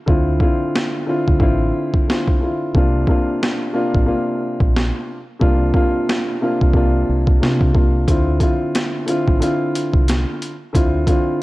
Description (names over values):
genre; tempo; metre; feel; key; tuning
hip hop, boom-bap hip-hop; 90 BPM; 4/4; swing 60% on 16ths; D minor; A4 = 441 Hz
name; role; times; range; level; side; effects
dark concert grand piano; accompaniment; 0.1-11.4 s; C3 to F4; -19 LUFS; equal; high-pass filter, low-pass filter
deep dub fingered electric bass; bass; 0.1-11.0 s; A1 to C3; -19 LUFS; equal; transformer saturation
boom bap sampler-style drum kit; drums; 0.1-11.3 s; hi-hat, kick drum, snare drum; -18 LUFS; equal; overdrive
room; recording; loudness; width
little or no reverb; worn, warbling old tape, cassette tape, warbly pitch drift; -15 LUFS; side -19 dB against mid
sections
0.0-11.4 A section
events
break 0.0-8.1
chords
0.0 Dm9; 2.7 C9sus4; 8.1 Dm9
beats
| 0.08 0.75 1.42 2.08 | 2.75 3.42 4.08 4.75 | 5.42 6.08 6.75 7.42 | 8.08 8.75 9.41 10.08 | 10.75 11.41